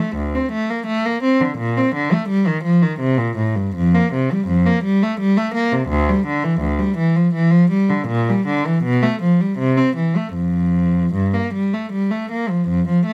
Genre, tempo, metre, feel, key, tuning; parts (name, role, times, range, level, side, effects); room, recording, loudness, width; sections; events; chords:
classical, baroque-style suite movement for unaccompanied cello; 75-85 BPM; 3/4; rubato; Bb major, F major from 3.8 s; A4 = 440 Hz
rich cello; solo; 0.0-13.1 s; D2 to C4; -18 LUFS; equal
moderate studio ambience, RT60 0.5 s; -18 LUFS; mono
0.0-12.7 A section